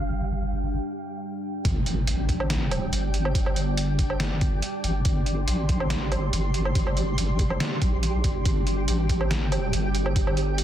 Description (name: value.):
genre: deep dubstep.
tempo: 141 BPM.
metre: 4/4.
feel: half-time.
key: unclear.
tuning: A4 = 440 Hz.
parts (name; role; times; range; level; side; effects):
deep dark ambient pad; sustained chords; 0.0-10.6 s; G3 to G5; -32 LUFS; right 1 dB; chorus, built-in reverb.
deep soft wobble bass; bass; 0.0-10.6 s; G1 to Bb1; -26 LUFS; equal; chorus.
flickering grainy texture; texture; 0.0-10.6 s; G4 to C6; -34 LUFS; right 1 dB; built-in reverb.
electronic kick drum; drums; 1.6-10.2 s; none; -25 LUFS; equal; overdrive.
trip hop sampler-style drum kit; drums; 1.6-10.6 s; hi-hat, snare drum, woodblock; -30 LUFS; right 1 dB; overdrive.
impact; sound effects; 1.6-3.4 s; none; -33 LUFS; equal; none.
room: little or no reverb.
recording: dense, heavily limited modern master.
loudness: -23 LUFS.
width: side -11 dB against mid.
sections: 0.0-1.6 A section; 1.6-10.6 B section.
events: filter sweep 0.0-1.6; break 0.8-1.6; drop 1.6-10.6; impact 1.6-3.4.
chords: 0.0 G5.